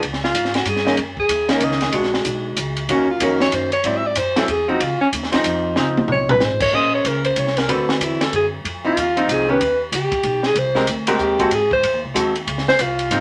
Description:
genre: jazz, small-group swing and bop.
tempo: 188 BPM.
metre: 3/4.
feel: swing 62% on 8ths.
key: Db major, Bb minor from 6.7 s.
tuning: A4 = 442 Hz.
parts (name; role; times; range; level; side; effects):
bright alto saxophone; melody; 0.0-13.2 s; C4 to Fb5; -22 LUFS; equal; none.
upright bass; bass; 0.0-13.2 s; Ab1 to Ab2; -31 LUFS; equal; none.
compact cocktail drum kit; drums; 0.0-13.2 s; crash cymbal, hi-hat, kick drum, ride cymbal, snare drum, toms; -25 LUFS; equal; none.
archtop guitar, miked and amplified; accompaniment; 0.9-13.2 s; D3 to C5; -23 LUFS; equal; none.
room: wet studio reverb, RT60 0.5 s.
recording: none.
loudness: -19 LUFS.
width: mono.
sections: 0.0-6.7 A section; 6.7-13.2 A section.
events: alto saxophone solo 0.0-13.2; drum fill 5.8-6.4.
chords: 0.0 Db; 1.0 Gb6; 1.9 Bb7alt; 2.9 Ebm7; 3.8 Ab7b13; 4.8 Dbmaj9; 6.7 Bbm9; 7.7 D13; 8.6 Dbmaj9 (rootless); 9.6 Ebaug7; 10.6 Abmaj9; 11.5 Ab7b9; 12.5 Dbmaj7.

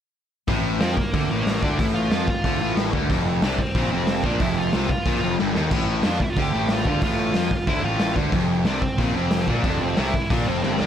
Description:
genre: punk rock.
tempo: 183 BPM.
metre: 4/4.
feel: straight.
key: unclear.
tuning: A4 = 442 Hz.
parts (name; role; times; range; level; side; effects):
biting overdriven guitar; riff; 0.5-10.9 s; F2 to F3; -27 LUFS; left 10 dB; none.
distorted electric guitar; riff; 0.5-10.9 s; F2 to F3; -29 LUFS; right 11 dB; distortion.
thick fuzz guitar; riff; 0.5-10.9 s; F2 to F3; -30 LUFS; equal; distortion.
fuzz picked electric bass; bass; 0.5-10.9 s; F1 to F2; -27 LUFS; equal; overdrive.
raw garage drum kit; drums; 0.5-10.9 s; crash cymbal, hi-hat, kick drum, snare drum; -24 LUFS; equal; none.
dark smooth lead guitar; melody; 0.8-10.9 s; Bb3 to G5; -28 LUFS; equal; overdrive.
room: little or no reverb.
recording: none.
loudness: -20 LUFS.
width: side -9 dB against mid.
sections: 0.5-10.9 A section.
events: drum fill 5.4-5.7, 10.6.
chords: 0.5 Bb5; 3.1 F5; 5.7 N.C.; 8.3 F5.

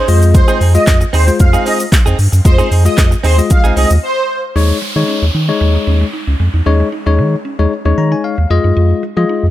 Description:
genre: dance-pop.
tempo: 114 BPM.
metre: 4/4.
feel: straight.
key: unclear.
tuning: A4 = 442 Hz.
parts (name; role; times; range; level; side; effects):
soft supersaw; melody; 0.0-4.4 s; C5 to F5; -18 LUFS; right 2 dB; tape echo.
direct-recorded clean electric guitar; riff; 0.0-3.9 s; C4 to Ab4; -21 LUFS; right 6 dB; wide subtle chorus.
bell-like tine electric piano; accompaniment; 0.1-9.5 s; Ab3 to Bb5; -17 LUFS; left 5 dB; sidechain pumping.
round analog bass; bass; 0.1-9.5 s; Bb1 to F3; -11 LUFS; equal; sidechain pumping.
deep house drum kit; drums; 0.1-4.0 s; handclaps, hi-hat, kick drum, shaker, snare drum; -12 LUFS; equal; none.
mallet-like synth pluck; arpeggios; 4.6-9.4 s; Ab3 to F4; -26 LUFS; right 4 dB; chorus, sidechain pumping, tape echo.
downlifter; sound effects; 4.6-8.8 s; none; -25 LUFS; right 1 dB; none.
room: digital ambience.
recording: none.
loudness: -10 LUFS.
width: side -14 dB against mid.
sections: 0.0-4.6 A section; 4.6-9.5 B section.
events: break 4.0-4.6; tine electric piano fill 7.7-8.8.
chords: 0.1 Fm7; 4.6 Eb7sus4; 8.5 Fm7.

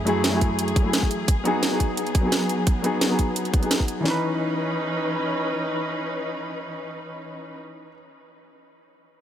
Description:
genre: liquid drum and bass.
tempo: 173 BPM.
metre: 4/4.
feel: straight.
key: C# minor.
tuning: A4 = 439 Hz.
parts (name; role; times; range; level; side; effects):
warm baby grand piano; accompaniment; 0.0-7.9 s; E3 to B4; -25 LUFS; equal; digital delay.
muted studio string section; sustained chords; 0.0-7.6 s; F#2 to B4; -28 LUFS; left 1 dB; sidechain pumping.
drum and bass drum kit; drums; 0.1-4.0 s; hi-hat, snare drum; -26 LUFS; right 2 dB; overdrive.
drum and bass drum kit; drums; 0.4-4.1 s; kick drum, snare drum; -22 LUFS; equal; overdrive.
room: light reverb, studio ambience.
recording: none.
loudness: -21 LUFS.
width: side -10 dB against mid.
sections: 0.0-4.1 A section; 4.1-6.8 B section.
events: none.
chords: 0.0 F#m9; 1.3 G#m7; 4.1 C#m9.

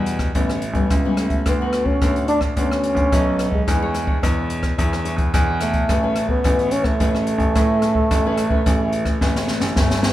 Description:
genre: samba and choro.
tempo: 108 BPM.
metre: 4/4.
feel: straight.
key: A major.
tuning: A4 = 441 Hz.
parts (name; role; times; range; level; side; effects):
nylon-string guitar; accompaniment; 0.0-10.1 s; A2 to C#5; -26 LUFS; left 4 dB; none.
warm concert grand piano; bass; 0.0-10.1 s; G1 to A2; -23 LUFS; right 1 dB; none.
open jazz drum kit; drums; 0.1-10.1 s; hi-hat, kick drum, rim click, snare drum; -21 LUFS; equal; none.
breathy trombone; melody; 1.2-10.1 s; G#3 to D4; -21 LUFS; equal; none.
room: moderate recital hall reverb, RT60 1.6 s.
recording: recorded in a church or concert hall.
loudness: -17 LUFS.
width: side -14 dB against mid.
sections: 0.0-10.1 A section.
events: drum fill 9.2-10.1.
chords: 0.3 A9; 1.5 D6; 3.7 E6; 5.9 Amaj9.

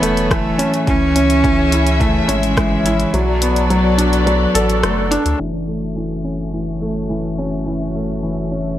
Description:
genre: piano and strings electronica.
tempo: 106 BPM.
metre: 4/4.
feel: straight.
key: F# minor.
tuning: A4 = 440 Hz.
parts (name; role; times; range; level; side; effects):
rich cello; melody; 0.0-4.8 s; F#3 to C#4; -19 LUFS; right 1 dB; tape echo.
dark studio string section; sustained chords; 0.0-8.8 s; C#3 to E5; -24 LUFS; left 3 dB; sidechain pumping.
felt-muted upright piano; riff; 0.0-8.8 s; E3 to A4; -19 LUFS; equal; tape echo.
round analog bass; bass; 0.0-8.8 s; E1 to D2; -21 LUFS; equal; sidechain pumping.
deep house drum kit; drums; 0.0-5.4 s; hi-hat, rim click; -23 LUFS; left 1 dB; none.
electronic kick drum; drums; 0.3-2.7 s; none; -20 LUFS; equal; none.
room: light reverb, studio reverb.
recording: low-pass filter.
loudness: -14 LUFS.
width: side -12 dB against mid.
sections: 0.0-5.4 A section; 5.4-8.8 B section.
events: kick drops out 3.1-5.4; band accent 4.8; filter sweep 5.4-8.8.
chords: 0.0 F#m7; 0.9 C#m; 3.1 Bm7; 5.4 F#m7.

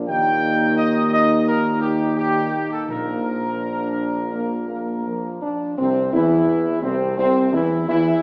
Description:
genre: classical, ceremonial fanfare.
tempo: 86 BPM.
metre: 4/4.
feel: straight.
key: Bb major.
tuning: A4 = 441 Hz.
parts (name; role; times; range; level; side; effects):
mellow French horn section; sustained chords; 0.0-8.2 s; F3 to E4; -25 LUFS; equal; none.
warm trombone section; sustained chords; 0.0-8.2 s; Bb2 to F3; -28 LUFS; equal; none.
clear tuba; bass; 0.0-8.2 s; Bb1 to E2; -26 LUFS; equal; none.
warm trumpet section; melody; 0.1-8.2 s; C4 to G5; -26 LUFS; equal; none.
timpani; percussion; 2.9-3.9 s; Bb2; -44 LUFS; equal; none.
room: wet recital hall reverb, RT60 1.4 s.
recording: recorded in a church or concert hall, small speaker sound.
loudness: -20 LUFS.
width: mono.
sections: 0.0-5.8 A section; 5.8-8.2 B section.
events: none.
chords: 0.1 Eb; 2.9 Bb; 5.8 C.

